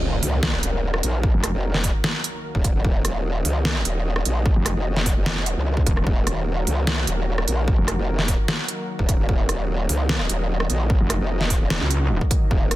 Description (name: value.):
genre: heavy wobble dubstep.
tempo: 149 BPM.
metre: 4/4.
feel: half-time.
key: Eb minor.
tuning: A4 = 441 Hz.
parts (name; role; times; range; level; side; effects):
supersaw pad; sustained chords; 0.0-12.8 s; Eb3 to Eb5; -31 LUFS; equal; sidechain pumping, low-pass filter.
growl bass; bass; 0.0-12.8 s; Eb1 to Db2; -23 LUFS; equal; chorus, overdrive.
impact; sound effects; 0.0-1.2 s; none; -30 LUFS; equal; none.
dubstep drum kit; drums; 0.2-12.8 s; hi-hat, rim click, snare drum; -25 LUFS; right 1 dB; soft clipping on snare.
electronic kick drum; drums; 1.2-12.6 s; none; -20 LUFS; equal; none.
metallic wobble bass; bass; 1.3-1.5, 4.6-8.0, 11.0-12.2 s; Eb1 to Db2; -22 LUFS; equal; distortion, chorus, overdrive.
room: digital ambience.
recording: dense, heavily limited modern master.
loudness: -19 LUFS.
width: side -16 dB against mid.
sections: 0.0-12.8 A section.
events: impact 0.0-1.2.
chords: 0.0 Ebm.